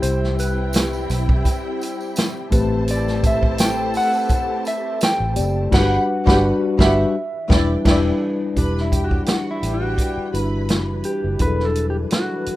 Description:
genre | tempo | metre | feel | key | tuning
lush 1970s-style soul | 84 BPM | 4/4 | swing 54% on 16ths | E minor | A4 = 441 Hz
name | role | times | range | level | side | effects
mellow electric guitar | melody | 0.0-12.6 s | D4 to G5 | -24 LUFS | equal | none
muted studio string section | second line | 0.0-11.0 s | G3 to B5 | -28 LUFS | equal | none
mellow tine electric piano | accompaniment | 0.0-12.6 s | F#3 to D5 | -23 LUFS | left 2 dB | slow stereo tremolo
soft string machine | sustained chords | 0.0-12.6 s | E3 to B4 | -32 LUFS | equal | phaser, ensemble chorus
vintage muted fingered electric bass | bass | 0.0-12.5 s | E1 to C2 | -22 LUFS | equal | none
vintage drum kit | drums | 0.0-12.6 s | crash cymbal, hi-hat, kick drum, snare drum | -19 LUFS | equal | none
tambourine | percussion | 0.0-5.5 s | none | -38 LUFS | right 3 dB | none
room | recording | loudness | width
light reverb | rough home demo mix | -17 LUFS | side -16 dB against mid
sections
0.0-8.6 A section; 8.6-12.6 B section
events
band accent 5.7-8.6; clean electric guitar solo 8.6-12.6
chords
0.0 Cmaj7; 2.5 Am9; 5.7 Gmaj7; 7.1 Em7; 8.6 Em9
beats
| 0.03 0.74 1.45 2.16 | 2.88 3.59 4.30 5.01 | 5.72 6.43 7.14 7.85 | 8.56 9.27 9.98 10.69 | 11.40 12.12

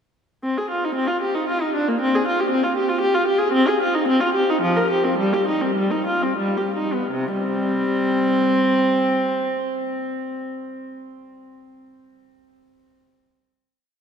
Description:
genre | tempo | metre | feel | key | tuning
classical, baroque-style suite movement for unaccompanied viola | 82-119 BPM | 3/4 | rubato | C minor | A4 = 441 Hz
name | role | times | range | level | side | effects
warm viola | solo | 0.4-10.4 s | C3 to Bb4 | -19 LUFS | equal | none
room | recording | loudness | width
wet cathedral reverb, RT60 4.6 s | none | -18 LUFS | side -7 dB against mid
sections
0.4-7.1 A section; 7.1-11.5 final chord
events
slowing down 2.8-7.1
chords
0.4 Cm; 2.0 Csus4; 3.5 Cm; 4.6 F5; 5.2 G7sus4; 6.4 G; 7.1 C5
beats
| 0.44 0.97 1.49 | 2.00 2.52 3.02 | 3.54 4.08 4.61 | 5.17 5.77 6.42 | 7.14 7.86 8.59 | 9.31 10.03

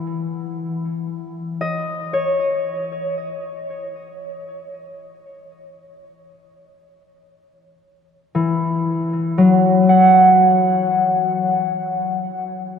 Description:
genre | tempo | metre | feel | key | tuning
ambient | free time | none | none | unclear | A4 = 441 Hz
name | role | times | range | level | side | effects
concert harp | solo | 0.0-12.8 s | E3 to F#5 | -16 LUFS | left 1 dB | ping-pong delay
room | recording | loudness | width
wet huge ambient reverb, RT60 8.2 s | worn, warbling old tape, cassette tape, warbly pitch drift | -15 LUFS | side -7 dB against mid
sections
0.1-12.8 A section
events
none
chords
0.0 C#madd11/E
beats
free time

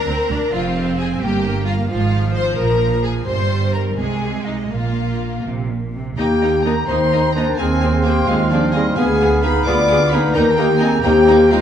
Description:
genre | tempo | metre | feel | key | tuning
quick classical-period movement for symphony orchestra | 86 BPM (dotted quarters) | 6/8 | rubato | Eb major | A4 = 440 Hz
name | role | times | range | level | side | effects
rich chamber violin section | melody | 0.0-11.6 s | D5 to D6 | -27 LUFS | left 4 dB | none
rich studio violin section | second line | 0.0-11.6 s | Eb4 to Bb5 | -25 LUFS | left 2 dB | none
rich chamber viola section | accompaniment | 0.0-11.6 s | F3 to Ab4 | -24 LUFS | right 2 dB | none
rich chamber double bass section | bass | 0.1-11.6 s | F1 to Eb2 | -22 LUFS | right 4 dB | none
warm studio cello section | bass | 0.1-11.6 s | D2 to C3 | -22 LUFS | right 2 dB | none
bright clarinet | second line | 6.2-11.6 s | F3 to F4 | -23 LUFS | left 1 dB | none
bright large flute ensemble | second line | 6.2-11.5 s | Bb5 to C6 | -28 LUFS | right 1 dB | none
clear oboe | second line | 6.2-11.6 s | F5 to G5 | -26 LUFS | right 3 dB | none
mellow French horn section | sustained chords | 6.2-11.6 s | D4 to D5 | -17 LUFS | left 3 dB | none
mellow bassoon | accompaniment | 6.9-11.6 s | Bb3 to C4 | -24 LUFS | right 1 dB | none
room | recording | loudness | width
wet scoring stage reverb, RT60 1.6 s | dark, warm production | -15 LUFS | side -9 dB against mid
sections
0.0-6.2 A section; 6.2-11.6 B section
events
none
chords
0.0 Bb/D; 0.5 Fm; 1.2 Gm7; 1.9 Fm/Ab; 2.6 Bb5; 3.3 Gmadd11; 4.0 Ab/C; 4.7 Bb5; 5.4 Bbsus2; 6.2 Eb; 7.6 Fm7/Eb; 9.0 Ddim7; 10.3 Eb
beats
| 0.53 1.21 | 1.90 2.58 | 3.27 3.98 | 4.71 5.45 | 6.18 6.88 | 7.58 8.28 | 8.97 9.67 | 10.35 11.04

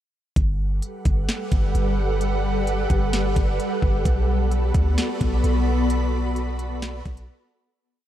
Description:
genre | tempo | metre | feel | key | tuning
hip hop, atmospheric cloud-rap | 130 BPM | 4/4 | half-time | G major | A4 = 440 Hz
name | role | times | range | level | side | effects
ethereal airy pad | sustained chords | 0.9-7.7 s | G3 to B5 | -25 LUFS | equal | ensemble chorus, built-in reverb, sidechain pumping
warm 808-style bass | bass | 0.4-7.3 s | G1 to D2 | -23 LUFS | equal | none
trap drum kit | drums | 0.4-7.3 s | hi-hat, kick drum, snare drum | -24 LUFS | equal | overdrive
room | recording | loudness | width
light reverb | none | -20 LUFS | side -12 dB against mid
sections
0.4-7.7 verse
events
fade-out 5.9-7.7; break 7.3-7.7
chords
0.4 Gmaj7; 4.1 Bm7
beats
| 0.36 0.82 1.29 1.75 | 2.21 2.67 3.13 3.59 | 4.05 4.52 4.98 5.44 | 5.90 6.36 6.83 7.29

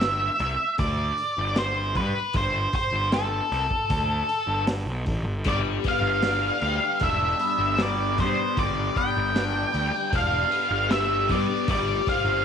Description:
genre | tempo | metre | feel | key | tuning
psychedelic rock | 77 BPM | 4/4 | straight | G mixolydian | A4 = 440 Hz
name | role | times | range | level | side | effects
octave-fuzz lead guitar | melody | 0.0-12.4 s | A4 to G5 | -25 LUFS | right 1 dB | distortion, slapback echo
fuzz picked electric bass | bass | 0.0-12.4 s | E1 to G2 | -28 LUFS | equal | overdrive
crunchy breakbeat drum kit | drums | 0.0-12.3 s | hi-hat, kick drum, snare drum | -30 LUFS | equal | none
soft string machine | sustained chords | 5.4-12.4 s | G3 to D5 | -36 LUFS | right 13 dB | ensemble chorus
overdriven electric guitar | riff | 5.5-12.4 s | G3 to G4 | -28 LUFS | left 14 dB | phaser
room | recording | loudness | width
light reverb, studio ambience | 1960s-style stereo with parts hard left and right | -22 LUFS | side -7 dB against mid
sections
0.0-12.4 A section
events
none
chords
0.0 Gsus2; 5.5 G; 11.7 Fadd9/G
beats
0.01 0.79 1.56 | 2.34 3.12 3.90 4.68 | 5.46 6.23 7.01 7.79 | 8.57 9.35 10.12 10.90 | 11.68

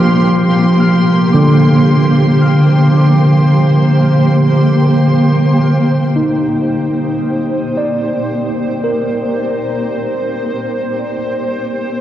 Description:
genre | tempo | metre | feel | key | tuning
ambient | 56 BPM | 3/4 | straight | C minor | A4 = 442 Hz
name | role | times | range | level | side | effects
granular cloud pad | sustained chords | 0.0-12.0 s | Bb3 to G5 | -16 LUFS | equal | built-in reverb, shimmer reverb
tine electric piano | arpeggios | 0.0-12.0 s | D3 to F6 | -12 LUFS | equal | medium stereo tremolo, diffuse ambient delay
analog drone | drone | 0.5-6.3 s | none | barely audible | none | none
clear studio violin section | texture | 0.0-6.2 s | C6 | -24 LUFS | equal | shimmer reverb
room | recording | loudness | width
wet cathedral reverb, RT60 6.5 s | worn, warbling old tape, cassette tape, warbly pitch drift, nothing above 7.5 kHz | -10 LUFS | side -12 dB against mid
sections
0.0-6.2 A section; 6.2-12.0 B section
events
none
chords
0.0 C9sus4; 6.2 Cm7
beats
0.81 1.88 | 2.95 4.02 5.09 | 6.16 7.23 8.31 | 9.38 10.45 11.52

